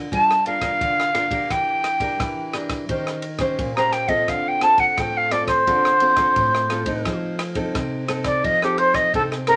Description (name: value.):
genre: samba and choro.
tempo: 87 BPM.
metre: 4/4.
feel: straight.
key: unclear.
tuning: A4 = 440 Hz.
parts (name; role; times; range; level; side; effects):
nylon-string guitar; accompaniment; 0.0-9.6 s; A2 to C5; -28 LUFS; equal; none.
reedy silver concert flute; melody; 0.1-9.6 s; G4 to Bb5; -20 LUFS; equal; none.
compact cocktail drum kit; drums; 0.1-9.6 s; kick drum, ride cymbal, rim click; -32 LUFS; equal; none.
room: wet small room ambience, RT60 0.5 s.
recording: none.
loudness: -21 LUFS.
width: mono.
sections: 0.0-9.6 A section.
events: flute solo 0.0-9.6.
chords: 0.0 Gm7; 1.5 Em7b5; 2.9 Eb13; 4.3 Dm7; 7.1 F7.